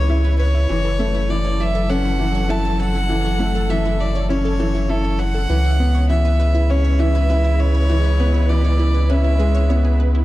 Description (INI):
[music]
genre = piano and strings electronica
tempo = 100 BPM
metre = 4/4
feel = straight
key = F# minor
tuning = A4 = 440 Hz
[part]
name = clear violin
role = melody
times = 0.0-10.0 s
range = A4 to A5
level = -25 LUFS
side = equal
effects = tape echo
[part]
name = dark studio string section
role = sustained chords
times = 0.0-10.2 s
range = C#3 to B4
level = -27 LUFS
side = equal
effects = none
[part]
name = clear upright piano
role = riff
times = 0.0-10.2 s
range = E3 to E4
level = -24 LUFS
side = left 2 dB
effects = tape echo
[part]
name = warm sub bass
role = bass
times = 0.0-10.2 s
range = F#1 to C#2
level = -17 LUFS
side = equal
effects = none
[part]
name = wide unison pluck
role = arpeggios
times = 0.1-10.2 s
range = E4 to C#5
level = -31 LUFS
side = right 2 dB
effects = tape echo
[sound]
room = light reverb, studio ambience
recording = dark, warm production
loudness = -16 LUFS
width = side -16 dB against mid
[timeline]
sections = 0.0-10.2 A section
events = none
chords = 0.0 C#m7; 0.7 F#m7; 5.5 C#m7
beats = 0.10 | 0.70 1.30 1.90 2.50 | 3.10 3.70 4.30 4.90 | 5.50 6.10 6.70 7.30 | 7.90 8.50 9.10 9.70